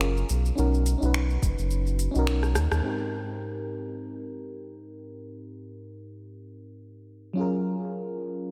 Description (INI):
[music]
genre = sunset chillout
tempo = 106 BPM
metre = 4/4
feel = swing 56% on 16ths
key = Ab major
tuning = A4 = 440 Hz
[part]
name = mellow FM electric piano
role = accompaniment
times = 0.0-8.5 s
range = Ab2 to B4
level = -34 LUFS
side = equal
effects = chorus, analog delay
[part]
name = round analog bass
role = bass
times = 0.0-2.8 s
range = Gb1 to D#2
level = -27 LUFS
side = equal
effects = none
[part]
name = smooth R&B drum kit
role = drums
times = 0.0-2.8 s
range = finger snaps, hi-hat, rim click, shaker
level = -36 LUFS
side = equal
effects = low-pass filter on perc, low-pass filter on hats, low-pass filter on snare
[part]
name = electronic kick drum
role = drums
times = 1.4-1.6 s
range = none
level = -30 LUFS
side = equal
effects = none
[sound]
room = light reverb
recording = echo-heavy mix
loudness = -27 LUFS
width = mono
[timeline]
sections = 0.0-2.8 A section; 2.8-8.5 B section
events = kick drops out 2.3-2.8; drum fill 2.4-2.8; band accent 2.7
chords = 0.3 Bmaj9; 2.8 Abmaj9; 7.4 Gbmaj9